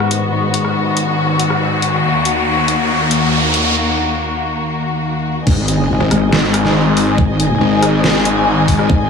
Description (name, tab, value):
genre	heavy wobble dubstep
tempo	140 BPM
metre	4/4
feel	half-time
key	G# minor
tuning	A4 = 440 Hz
part	muted studio string section	sustained chords	0.0-9.1 s	D#2 to G#5	-16 LUFS	left 2 dB	sidechain pumping, low-pass filter
part	dubstep drum kit	drums	0.0-8.9 s	crash cymbal, hi-hat, rim click, snare drum	-19 LUFS	equal	high-pass filter on hats, high-pass filter on snare, high-pass filter on cymbals, high-pass filter on room
part	riser	sound effects	0.0-3.8 s	none	-20 LUFS	right 1 dB	none
part	wobble bass	bass	5.5-9.1 s	G#1	-14 LUFS	equal	chorus, overdrive
part	electronic kick drum	drums	5.5-9.0 s	none	-15 LUFS	equal	none
part	snarling distorted saw bass	bass	6.0-8.9 s	G#1	-14 LUFS	left 1 dB	distortion, overdrive
room	light reverb, digital ambience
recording	none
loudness	-12 LUFS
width	side -6 dB against mid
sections	0.0-5.5 A section; 5.5-9.1 B section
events	build-up 0.0-5.5; riser 0.0-3.8; break 3.8-5.5; drop 5.5-9.1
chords	0.0 G#m7; 2.0 D#m; 5.5 G#5